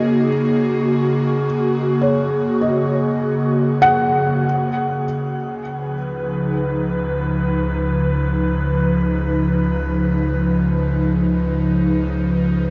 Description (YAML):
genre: ambient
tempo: 50 BPM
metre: 3/4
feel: straight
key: unclear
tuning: A4 = 444 Hz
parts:
  - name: airy breathy pad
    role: sustained chords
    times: 0.0-12.7 s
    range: C#3 to B4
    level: -20 LUFS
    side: equal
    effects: chorus, shimmer reverb
  - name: felt-muted upright piano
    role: arpeggios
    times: 0.0-5.6 s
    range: C#5 to F#5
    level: -24 LUFS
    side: equal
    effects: diffuse ambient delay, shimmer reverb
  - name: warm sub bass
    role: bass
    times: 5.0-12.7 s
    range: C#2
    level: -27 LUFS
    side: equal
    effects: none
room: wet cathedral reverb, RT60 6.8 s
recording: dark, warm production, nothing above 7.5 kHz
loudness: -19 LUFS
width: mono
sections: 0.0-5.0 A section; 5.0-12.7 B section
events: fade-out on sub bass 5.0-12.7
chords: 0.0 F#add9; 5.0 C#9